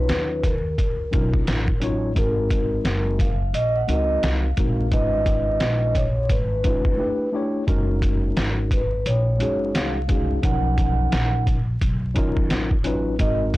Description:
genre	hip hop, jazz-hop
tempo	87 BPM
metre	4/4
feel	swing 60% on 16ths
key	unclear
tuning	A4 = 440 Hz
part	vibraphone with soft mallets	melody	0.0-13.4 s	A#4 to F#5	-26 LUFS	right 1 dB	none
part	tine electric piano	accompaniment	0.0-13.6 s	E#3 to C#5	-26 LUFS	left 1 dB	medium stereo tremolo
part	upright bass	bass	0.0-13.6 s	F#1 to D#2	-24 LUFS	equal	tube saturation
part	trip hop sampler-style drum kit	drums	0.1-13.6 s	hi-hat, kick drum, snare drum	-23 LUFS	equal	vintage 12-bit sampler grit
room	little or no reverb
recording	blown-out, overdriven recording, vinyl crackle, overdrive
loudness	-19 LUFS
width	side -18 dB against mid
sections	0.0-13.6 A section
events	break 7.0-7.7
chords	0.0 Bmaj9#11; 2.2 G#9; 4.9 C#9/G#; 7.0 G6; 7.7 F#6; 10.4 Bmaj9#11

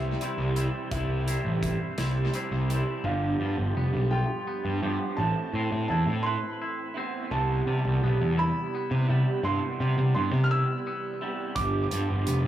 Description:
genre	indie rock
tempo	56 BPM (dotted quarters)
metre	6/8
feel	straight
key	unclear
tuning	A4 = 440 Hz
part	dark upright piano	melody	0.0-12.2 s	E5 to F6	-33 LUFS	right 2 dB	tape echo
part	electric guitar through a small old amp	riff	0.0-12.5 s	G2 to G4	-33 LUFS	right 5 dB	ensemble chorus, tape echo
part	twangy electric guitar	riff	0.0-12.5 s	G2 to B4	-35 LUFS	left 4 dB	tape echo
part	fuzz picked electric bass	bass	0.0-12.5 s	F1 to C3	-26 LUFS	equal	overdrive
part	big rock drum kit	drums	0.2-2.9, 11.6-12.4 s	hi-hat, kick drum, snare drum	-37 LUFS	right 1 dB	tape echo
room	little or no reverb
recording	echo-heavy mix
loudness	-25 LUFS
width	side -12 dB against mid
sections	0.0-3.0 A section; 3.0-12.5 B section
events	none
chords	0.0 C; 3.0 G7; 5.2 Amadd9; 7.3 Cmaj7; 11.6 G7

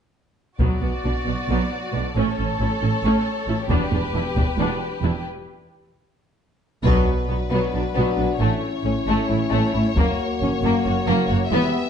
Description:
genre	cinematic, epic orchestral film score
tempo	270 BPM (eighths)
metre	7/8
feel	straight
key	B minor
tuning	A4 = 439 Hz
part	rich symphonic violin section	second line	0.6-11.7 s	A3 to D5	-27 LUFS	left 3 dB	none
part	warm symphonic viola section	accompaniment	0.6-11.7 s	F#3 to E4	-26 LUFS	equal	none
part	rich symphonic double bass section	bass	0.6-11.6 s	E1 to B1	-25 LUFS	right 2 dB	none
part	warm symphonic cello section	bass	0.6-11.6 s	E2 to B2	-25 LUFS	right 2 dB	none
part	taiko ensemble	drums	0.6-10.8 s	none	-23 LUFS	left 1 dB	none
part	warm studio violin section	melody	6.8-11.9 s	B4 to E5	-30 LUFS	left 5 dB	none
part	warm French horn section	sustained chords	6.9-11.9 s	A#3 to G4	-26 LUFS	left 4 dB	none
room	moderate recital hall reverb, RT60 1.2 s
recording	dark, warm production, nothing above 10.6 kHz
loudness	-19 LUFS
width	side -8 dB against mid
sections	0.6-6.8 A section; 6.8-11.9 B section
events	break 5.3-6.8; build-up 6.8-11.9; band accent 6.8-7.3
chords	0.6 Bm; 2.2 A; 3.7 Em7; 5.3 N.C.; 6.8 Bm; 8.4 A; 10.0 F#

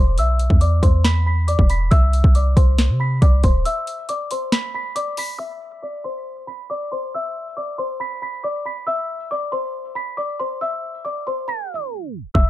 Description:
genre	hip hop, trap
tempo	138 BPM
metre	4/4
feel	half-time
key	unclear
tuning	A4 = 440 Hz
part	small celesta	melody	0.0-12.5 s	C5 to B6	-24 LUFS	left 1 dB	low-pass filter
part	clean 808-style bass	bass	0.0-3.6, 12.3-12.5 s	D1 to C3	-16 LUFS	equal	none
part	trap drum kit	drums	0.2-5.3, 12.3-12.5 s	hi-hat, kick drum, snare drum	-17 LUFS	equal	overdrive
room	digital ambience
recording	dark, warm production, tape stop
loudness	-18 LUFS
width	side -15 dB against mid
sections	0.0-5.4 A section; 5.4-12.3 B section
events	break 3.7-5.4; tape stop 11.5-12.3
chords	0.0 Cmaj9

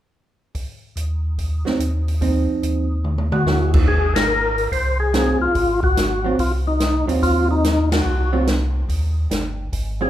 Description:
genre	soul jazz organ trio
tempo	144 BPM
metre	4/4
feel	swing 67% on 8ths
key	Ab mixolydian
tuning	A4 = 440 Hz
part	open jazz drum kit	drums	0.5-9.9 s	crash cymbal, hi-hat, kick drum, ride cymbal, snare drum, toms	-22 LUFS	equal	none
part	tonewheel organ	bass	1.0-10.1 s	G1 to Eb2	-21 LUFS	equal	chorus vibrato, slow rotary speaker
part	vintage hollow-body jazz guitar	accompaniment	1.7-10.1 s	F3 to Ab4	-24 LUFS	right 4 dB	none
part	percussive tonewheel organ	melody	3.3-10.1 s	Eb4 to C5	-20 LUFS	left 2 dB	slow rotary speaker, overdrive, chorus vibrato
room	moderate recital hall reverb, RT60 1.7 s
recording	recorded in a church or concert hall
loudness	-17 LUFS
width	side -12 dB against mid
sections	0.5-3.9 A section; 3.9-10.1 B section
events	drum fill 3.0-3.5; band accent 4.1, 7.8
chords	0.5 N.C.; 1.4 Ebm6; 2.2 Cmadd11/Eb; 3.0 Gb9; 3.9 Ab13; 8.9 Eb

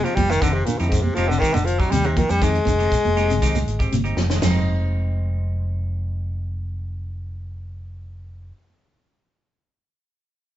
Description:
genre	afrobeat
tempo	120 BPM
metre	4/4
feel	straight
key	F dorian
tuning	A4 = 444 Hz
part	breathy baritone saxophone	melody	0.0-3.9 s	Ab2 to Ab3	-22 LUFS	left 2 dB	none
part	semi-hollow electric guitar	arpeggios	0.0-4.6 s	C3 to F3	-27 LUFS	left 5 dB	phaser
part	semi-hollow electric guitar	stabs	0.0-8.6 s	Ab3 to G4	-30 LUFS	right 3 dB	none
part	tight funk drum kit	drums	0.1-4.5 s	hi-hat, kick drum, snare drum, splash cymbal, toms	-26 LUFS	equal	none
part	fingered electric bass	bass	0.2-8.5 s	F1 to F2	-23 LUFS	equal	none
part	congas	percussion	0.2-4.5 s	none	-28 LUFS	right 4 dB	none
part	shekere	percussion	0.2-4.5 s	none	-32 LUFS	right 2 dB	none
room	moderate studio reverb, RT60 0.9 s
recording	band playing live in one room, nothing above 7.8 kHz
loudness	-18 LUFS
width	side -12 dB against mid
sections	0.0-4.4 A section; 4.4-8.4 B section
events	baritone saxophone solo 0.0-4.4; drum fill 4.2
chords	0.0 Fm9; 4.4 Fm7

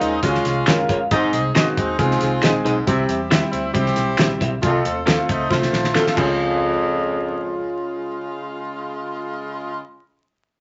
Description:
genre	uptempo 1960s-style soul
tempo	136 BPM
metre	4/4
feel	straight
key	Db major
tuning	A4 = 444 Hz
part	bright saxophone section	second line	0.0-9.8 s	Db3 to A4	-27 LUFS	equal	none
part	clear baby grand piano	accompaniment	0.0-9.8 s	G3 to C5	-27 LUFS	equal	none
part	vintage muted fingered electric bass	bass	0.0-9.8 s	Gb1 to Ab2	-30 LUFS	equal	none
part	cloth-damped thuddy drum kit	drums	0.0-6.3 s	crash cymbal, hi-hat, kick drum, snare drum	-24 LUFS	equal	none
part	electric guitar through a small old amp	stabs	0.7-9.9 s	Eb4 to F5	-27 LUFS	equal	none
part	finger snaps	percussion	0.7-6.6 s	none	-28 LUFS	equal	none
part	warm baritone saxophone	riff	1.1-7.7 s	F2 to C3	-26 LUFS	equal	none
room	wet club reverb, RT60 0.7 s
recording	vinyl crackle, nothing above 7.8 kHz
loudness	-20 LUFS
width	mono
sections	0.0-6.4 A section; 6.4-9.9 B section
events	drum fill 5.5-6.4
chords	0.0 Db; 1.1 Ab; 2.9 C; 4.6 F/C; 6.2 Db

